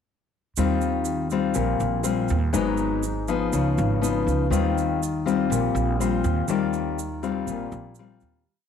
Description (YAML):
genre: bossa nova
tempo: 122 BPM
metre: 4/4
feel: straight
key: Eb major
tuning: A4 = 440 Hz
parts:
  - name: nylon-string guitar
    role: accompaniment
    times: 0.6-8.4 s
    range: Ab2 to F4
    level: -23 LUFS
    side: left 6 dB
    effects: none
  - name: upright bass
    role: bass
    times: 0.6-8.4 s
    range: Ab1 to Eb2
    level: -26 LUFS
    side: right 2 dB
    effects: none
  - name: tube shaker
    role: percussion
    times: 0.6-8.5 s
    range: none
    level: -36 LUFS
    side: right 13 dB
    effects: none
room: moderate echo chamber reverb, RT60 1.6 s, small room ambience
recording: 1960s-style stereo with parts hard left and right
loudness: -22 LUFS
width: side -8 dB against mid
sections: 0.6-8.5 A section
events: fade-out 6.5-8.5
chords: 0.6 Eb69; 2.5 Abm7; 3.5 Db9; 4.5 Eb69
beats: | 0.56 1.06 1.55 2.04 | 2.54 3.03 3.52 4.02 | 4.51 5.00 5.50 5.99 | 6.49 6.98 7.47 7.96